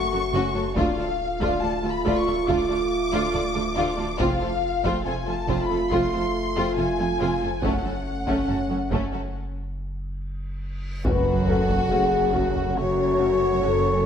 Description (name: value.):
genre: cinematic, hybrid orchestral and electronic film score.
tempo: 70 BPM.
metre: 4/4.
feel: straight.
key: F# harmonic minor.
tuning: A4 = 440 Hz.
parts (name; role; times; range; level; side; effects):
warm symphonic violin section; melody; 0.0-13.7 s; F#4 to D6; -30 LUFS; left 4 dB; none.
mellow French horn section; sustained chords; 0.0-14.1 s; A3 to B4; -26 LUFS; left 2 dB; none.
pure sine sub bass; bass; 0.0-14.1 s; D1 to F#1; -34 LUFS; equal; none.
warm symphonic violin section; second line; 0.1-14.1 s; A3 to D5; -31 LUFS; left 4 dB; none.
warm symphonic viola section; accompaniment; 0.1-13.7 s; A3 to F#4; -30 LUFS; right 3 dB; none.
warm symphonic cello section; bass; 0.1-14.1 s; D2 to F#2; -30 LUFS; right 3 dB; none.
warm symphonic double bass section; bass; 0.3-14.1 s; F1 to D2; -31 LUFS; right 3 dB; none.
solo taiko drums; drums; 0.8-13.2 s; none; -31 LUFS; equal; none.
reverse cymbal and sub drop; sound effects; 10.8-14.1 s; none; -34 LUFS; equal; none.
mellow horn-like synth lead; melody; 11.1-14.1 s; F#5 to C#6; -27 LUFS; right 2 dB; chorus, digital delay.
clear trombone section; sustained chords; 11.1-14.1 s; F#3 to A3; -32 LUFS; right 4 dB; none.
room: moderate scoring stage reverb, RT60 1.7 s.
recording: none.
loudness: -21 LUFS.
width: side -8 dB against mid.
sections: 0.0-11.1 A section; 11.1-14.1 B section.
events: break 9.3-11.1; drum fill 10.2-11.1; reverse cymbal 10.8; impact 11.1-14.1.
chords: 0.0 F#m; 0.8 Dm; 4.2 F; 7.6 F#m.